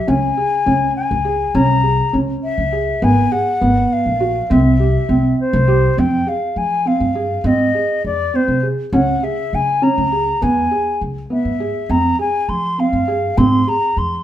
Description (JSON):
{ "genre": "contemporary instrumental, chamber music in an uneven meter", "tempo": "203 BPM (eighths)", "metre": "5/8", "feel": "straight", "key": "unclear", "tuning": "A4 = 436 Hz", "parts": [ { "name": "bright baroque flute", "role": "melody", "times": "0.0-14.2 s", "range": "C5 to C6", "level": "-18 LUFS", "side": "left 3 dB", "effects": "none" }, { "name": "felt-muted upright piano", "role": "arpeggios", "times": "0.1-14.1 s", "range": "Cb4 to Ab4", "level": "-18 LUFS", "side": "right 2 dB", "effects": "none" }, { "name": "upright bass", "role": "bass", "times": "0.1-14.2 s", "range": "Ab1 to F3", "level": "-20 LUFS", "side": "equal", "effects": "none" } ], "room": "wet studio reverb, RT60 0.9 s", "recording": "heard from further back in the room", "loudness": "-14 LUFS", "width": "side -12 dB against mid", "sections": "0.0-6.0 A section; 6.0-14.2 B section", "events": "none", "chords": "0.1 Db5; 3.0 Abm; 4.5 C; 6.0 Fm; 7.5 Ab; 8.9 Db5; 10.4 E; 11.9 Fm; 13.4 Ab" }